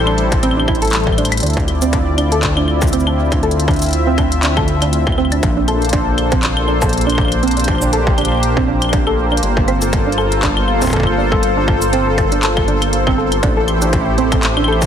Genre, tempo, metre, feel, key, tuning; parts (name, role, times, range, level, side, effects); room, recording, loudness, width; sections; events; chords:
IDM; 120 BPM; 4/4; swing 56% on 16ths; D minor; A4 = 440 Hz
warm analog pad; sustained chords; 0.0-14.9 s; G3 to E5; -19 LUFS; equal; chorus
dark detuned saw bass; bass; 0.0-14.9 s; G1 to D2; -18 LUFS; equal
industrial drum kit; drums; 0.0-14.9 s; claves, handclaps, hi-hat, shaker; -21 LUFS; left 2 dB; studio reverb, digital delay
soft round pluck; arpeggios; 0.1-14.8 s; C4 to A4; -20 LUFS; right 3 dB; chorus, ping-pong delay
electronic kick drum; drums; 0.3-14.9 s; -19 LUFS; equal; distortion, studio reverb
pulsing gated texture; texture; 9.6-14.9 s; A4; -25 LUFS; right 2 dB; chorus, built-in reverb
light reverb, digital ambience; dense, heavily limited modern master; -13 LUFS; side -8 dB against mid
0.0-1.4 A section; 1.4-14.9 A section
drum fill 1.2
0.0 Am7; 1.4 Dm9; 5.4 Bbmaj9; 9.4 Gm11; 13.4 Am7